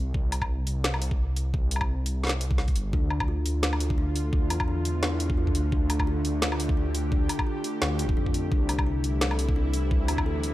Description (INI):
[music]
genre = half-time drum and bass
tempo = 172 BPM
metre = 4/4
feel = swing 56% on 16ths, half-time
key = D minor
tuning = A4 = 440 Hz
[part]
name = dark detuned saw bass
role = bass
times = 0.0-10.5 s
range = G1 to F2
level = -27 LUFS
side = equal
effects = none
[part]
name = electronic kick drum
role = drums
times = 0.1-10.2 s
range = none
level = -27 LUFS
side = equal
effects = overdrive, studio ambience
[part]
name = drum and bass drum kit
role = drums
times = 0.3-10.5 s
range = hi-hat, snare drum, woodblock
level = -30 LUFS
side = equal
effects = overdrive, studio ambience
[part]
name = bowed-like drone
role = sustained chords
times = 3.5-10.5 s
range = C3 to G4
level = -35 LUFS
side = right 1 dB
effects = built-in reverb, sidechain pumping
[part]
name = kalimba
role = arpeggios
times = 2.9-10.4 s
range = D4 to A4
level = -32 LUFS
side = left 2 dB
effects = digital delay
[sound]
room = light reverb, digital ambience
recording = dark, warm production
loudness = -24 LUFS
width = side -15 dB against mid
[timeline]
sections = 0.0-10.5 A section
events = none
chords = 0.0 C5; 2.9 Dm; 8.5 C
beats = | 0.14 0.49 0.84 1.19 | 1.54 1.89 2.24 2.59 | 2.94 3.28 3.63 3.98 | 4.33 4.68 5.03 5.38 | 5.73 6.08 6.42 6.77 | 7.12 7.47 7.82 8.17 | 8.52 8.87 9.21 9.56 | 9.91 10.26